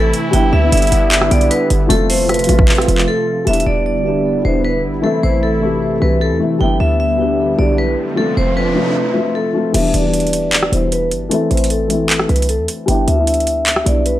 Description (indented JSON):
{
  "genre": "hip hop, trap",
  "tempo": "153 BPM",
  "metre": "4/4",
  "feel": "half-time",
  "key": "unclear",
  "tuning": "A4 = 440 Hz",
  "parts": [
    { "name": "vibraphone with hard mallets", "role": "melody", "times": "0.0-14.2 s", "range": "A4 to G5", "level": "-18 LUFS", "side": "equal", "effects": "low-pass filter, analog delay" },
    { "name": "felt-muted upright piano", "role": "accompaniment", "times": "0.0-14.2 s", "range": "E3 to G4", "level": "-19 LUFS", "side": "left 3 dB", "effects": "low-pass filter" },
    { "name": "sweeping resonant pad", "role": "sustained chords", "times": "0.0-9.7 s", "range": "C3 to F4", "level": "-21 LUFS", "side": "right 1 dB", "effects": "chorus" },
    { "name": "short 808-style bass", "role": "bass", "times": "0.0-14.2 s", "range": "E1 to E2", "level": "-17 LUFS", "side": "equal", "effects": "none" },
    { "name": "trap drum kit", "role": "drums", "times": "0.1-3.7, 9.7-14.1 s", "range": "crash cymbal, handclaps, hi-hat, kick drum, rim click", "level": "-17 LUFS", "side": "right 1 dB", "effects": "none" },
    { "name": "riser", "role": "sound effects", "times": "7.6-9.0 s", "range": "none", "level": "-26 LUFS", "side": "right 3 dB", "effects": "none" }
  ],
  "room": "digital ambience",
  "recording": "dry, gritty hardware recording",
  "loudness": "-12 LUFS",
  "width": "side -14 dB against mid",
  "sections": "0.0-3.5 A section; 3.5-9.7 B section; 9.7-14.2 C section",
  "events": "break 3.1-3.5; riser 7.6-9.7; filter sweep 9.7-14.2",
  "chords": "0.3 G6; 1.9 F; 3.5 Em7; 5.0 Am; 6.6 G6; 8.2 F; 9.7 Em7; 11.3 Am; 12.9 G6"
}